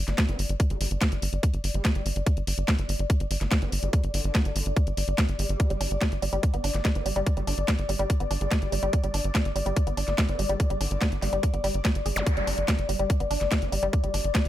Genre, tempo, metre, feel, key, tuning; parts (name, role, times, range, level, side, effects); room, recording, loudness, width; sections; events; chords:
psychedelic trance; 144 BPM; 4/4; straight; G major; A4 = 440 Hz
tight sequencer bass; bass; 0.0-14.5 s; G1; -28 LUFS; equal
airy breathy pad; texture; 0.0-14.5 s; D5; -34 LUFS; left 3 dB; chorus, sidechain pumping
drum and bass drum kit; drums; 0.1-14.5 s; hi-hat, snare drum; -30 LUFS; equal; overdrive
electronic kick drum; drums; 0.2-14.4 s; -24 LUFS; equal; overdrive
vowel-sweep wobble bass; second line; 0.3-14.2 s; D3 to B3; -43 LUFS; right 1 dB; lush chorus, sidechain pumping, high-pass filter, ping-pong delay
woody wave-folded pluck; riff; 5.7-14.4 s; G3 to Ab4; -32 LUFS; right 1 dB; chorus, auto-pan, sidechain pumping, digital delay
zap; sound effects; 12.2-12.3 s; -33 LUFS; equal
digital ambience; -24 LUFS; side -13 dB against mid
0.0-14.5 A section
0.0 G5